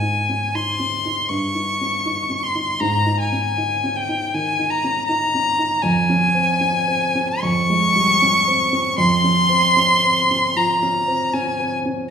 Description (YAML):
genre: classical, romantic duo for violin and grand piano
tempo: 78 BPM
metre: 4/4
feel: rubato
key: Ab major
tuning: A4 = 440 Hz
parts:
  - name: rich violin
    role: melody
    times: 0.0-11.7 s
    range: G5 to Db6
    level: -18 LUFS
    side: left 2 dB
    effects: none
  - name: dark grand piano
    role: accompaniment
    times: 0.0-12.1 s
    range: F2 to Eb4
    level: -22 LUFS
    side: right 2 dB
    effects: none
room: wet recital hall reverb, RT60 1.2 s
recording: recorded in a church or concert hall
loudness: -16 LUFS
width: side -7 dB against mid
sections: 0.0-12.1 A section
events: none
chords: 0.0 Ab; 1.3 Eb/G; 2.8 Ab5; 5.8 Db/F; 9.0 Bbm/F